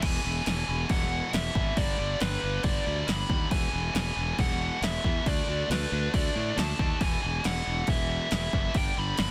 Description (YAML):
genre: hard rock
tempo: 138 BPM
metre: 4/4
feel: straight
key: unclear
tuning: A4 = 439 Hz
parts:
  - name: dark smooth lead guitar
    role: melody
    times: 0.0-9.3 s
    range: B4 to B5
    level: -34 LUFS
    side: equal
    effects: overdrive, digital delay
  - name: heavy high-gain guitar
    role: riff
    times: 0.0-9.3 s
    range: E2 to D4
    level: -36 LUFS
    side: equal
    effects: distortion
  - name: fuzz fingered electric bass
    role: bass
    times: 0.0-9.3 s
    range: E1 to A2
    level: -34 LUFS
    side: equal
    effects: overdrive
  - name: punchy analog drum machine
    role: drums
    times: 0.0-9.3 s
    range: crash cymbal, kick drum, snare drum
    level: -32 LUFS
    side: equal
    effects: none
room: little or no reverb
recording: dense, heavily limited modern master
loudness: -28 LUFS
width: mono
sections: 0.0-9.3 A section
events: none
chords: 0.0 E; 1.8 G; 3.5 E; 5.3 D5; 7.0 E; 8.8 G